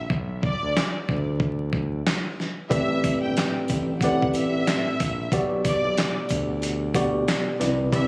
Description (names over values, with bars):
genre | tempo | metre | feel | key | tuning
hip hop, boom-bap hip-hop | 92 BPM | 4/4 | swing 60% on 16ths | unclear | A4 = 440 Hz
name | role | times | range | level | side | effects
clear studio violin section | melody | 0.0-8.1 s | D5 to G5 | -30 LUFS | equal | high-pass filter, low-pass filter, analog delay
smooth synth bass | bass | 0.0-8.1 s | G1 to D2 | -28 LUFS | equal | none
dusty soul sampler-style drum kit | drums | 0.1-8.1 s | handclaps, hi-hat, kick drum, snare drum | -26 LUFS | equal | none
tine electric piano | accompaniment | 2.7-8.1 s | A2 to D5 | -24 LUFS | equal | overdrive, fast stereo tremolo, high-pass filter, low-pass filter
sleigh bells | percussion | 2.7-8.1 s | none | -41 LUFS | equal | none
room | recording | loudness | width
light reverb, digital ambience | recorded on a phone in the room, club reverb, vinyl crackle, compression | -22 LUFS | side -26 dB against mid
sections
0.0-8.1 A section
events
hi-hats muted 0.1-2.7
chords
0.1 Bm; 2.7 Am11; 5.3 Gmaj7/B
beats
| 0.10 0.75 1.41 2.06 | 2.71 3.36 4.01 4.67 | 5.32 5.97 6.62 7.28 | 7.93